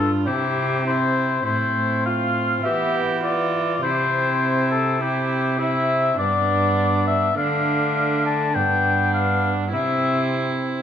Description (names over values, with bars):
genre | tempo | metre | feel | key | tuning
classical, renaissance-style consort dance | 102 BPM | 4/4 | straight | unclear | A4 = 440 Hz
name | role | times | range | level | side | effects
warm oboe | melody | 0.0-10.3 s | G4 to A5 | -22 LUFS | left 4 dB | none
warm viola | second line | 0.0-10.8 s | D4 to G4 | -27 LUFS | right 6 dB | none
warm trombone | accompaniment | 0.0-10.8 s | A3 to D4 | -27 LUFS | equal | none
rich cello | bass | 0.0-10.8 s | G2 to E3 | -25 LUFS | right 2 dB | none
room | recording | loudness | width
moderate recital hall reverb, RT60 1.7 s | minimal, uncompressed stereo recording | -18 LUFS | side -9 dB against mid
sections
0.0-10.8 A section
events
none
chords
0.3 C; 1.5 Am; 2.6 Em; 3.8 C; 6.2 G; 7.4 Dm; 8.6 G; 9.7 C